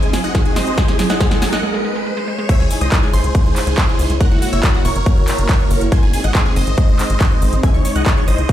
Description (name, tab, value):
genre	uplifting trance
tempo	140 BPM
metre	4/4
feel	straight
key	C# harmonic minor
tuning	A4 = 440 Hz
part	big supersaw lead	melody	0.0-8.5 s	F#4 to G#5	-23 LUFS	right 1 dB	phaser, sidechain pumping, tape echo
part	analog pluck	second line	0.0-8.5 s	F#5 to G#6	-32 LUFS	equal	chorus, sidechain pumping, tape echo
part	wide unison pluck	arpeggios	0.0-2.4 s	D#3 to D#4	-23 LUFS	right 3 dB	sidechain pumping, tape echo
part	big-room dance drum kit	drums	0.0-8.5 s	crash cymbal, handclaps, hi-hat, shaker, snare drum	-23 LUFS	equal	studio ambience
part	riser	sound effects	0.0-2.5 s	none	-26 LUFS	equal	none
part	electronic kick drum	drums	0.3-8.5 s	none	-15 LUFS	equal	overdrive, studio ambience
part	tight sequencer bass	bass	2.6-8.5 s	E1 to C#2	-17 LUFS	equal	sidechain pumping
room	light reverb, digital ambience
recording	played on a big sound system in a bare room, large studio reverb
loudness	-13 LUFS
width	side -12 dB against mid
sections	0.0-2.5 A section; 2.5-8.5 B section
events	build-up 0.0-2.5; drum fill 0.0-1.6; riser 0.0-2.5; filter sweep on synth arpeggio sound 0.0-2.5; break 1.6-2.5; drop 2.5-8.5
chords	0.0 G#; 0.8 C#madd9; 4.2 F#7; 5.9 G#; 7.6 C#madd9